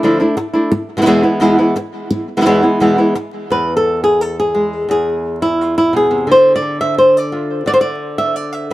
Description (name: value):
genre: flamenco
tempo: 173 BPM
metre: 4/4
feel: straight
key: E phrygian dominant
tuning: A4 = 440 Hz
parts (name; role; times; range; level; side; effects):
- flamenco guitar; solo; 0.0-8.7 s; E2 to E5; -12 LUFS; equal; tape echo
room: moderate studio reverb, RT60 0.7 s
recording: vinyl crackle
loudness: -12 LUFS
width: side -16 dB against mid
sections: 0.0-3.5 A section; 3.5-8.7 B section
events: none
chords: 0.0 Dmadd9; 0.7 E; 6.3 Dm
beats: 0.04 0.38 | 0.73 1.08 1.42 1.77 | 2.12 2.46 2.81 3.16 | 3.50 3.85 4.20 4.54 | 4.89 5.24 5.59 5.93 | 6.28 6.63 6.97 7.32 | 7.67 8.01 8.36 8.70